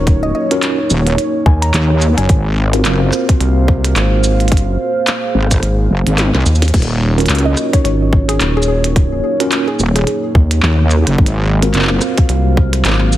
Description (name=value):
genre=glitch hop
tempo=108 BPM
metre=4/4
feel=swing 58% on 16ths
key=Eb dorian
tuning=A4 = 440 Hz
part: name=woody wave-folded pluck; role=melody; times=0.0-2.4, 7.5-10.2 s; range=Ab4 to Bb5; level=-23 LUFS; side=left 1 dB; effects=chorus, digital delay
part: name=dark analog pad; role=sustained chords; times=0.0-13.2 s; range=Gb3 to F5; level=-20 LUFS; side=right 1 dB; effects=chorus, phaser, sidechain pumping
part: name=mellow tine electric piano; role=stabs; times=0.0-13.2 s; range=C4 to Bb4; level=-20 LUFS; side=right 1 dB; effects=medium stereo tremolo, vintage 12-bit sampler grit, sidechain pumping, digital delay
part: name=rubbery square bass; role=bass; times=0.0-13.2 s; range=Eb1 to Eb2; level=-14 LUFS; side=equal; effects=none
part: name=electronic kick drum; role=drums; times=0.1-12.7 s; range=none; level=-11 LUFS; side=equal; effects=small room ambience
part: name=glitchy drum kit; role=drums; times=0.1-13.2 s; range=crash cymbal, handclaps, hi-hat, rim click, shaker, snare drum, toms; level=-19 LUFS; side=equal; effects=small room ambience
part: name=wobble bass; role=bass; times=0.9-12.0 s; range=Eb1 to Eb2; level=-13 LUFS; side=equal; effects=chorus
room=light reverb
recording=heavily compressed radio sound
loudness=-11 LUFS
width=side -14 dB against mid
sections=0.0-13.2 A section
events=kick drops out 5.6-6.7; drum fill 6.2-6.7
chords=0.0 Ebm7; 2.3 Ab13; 6.7 Ebm7; 11.2 Ab13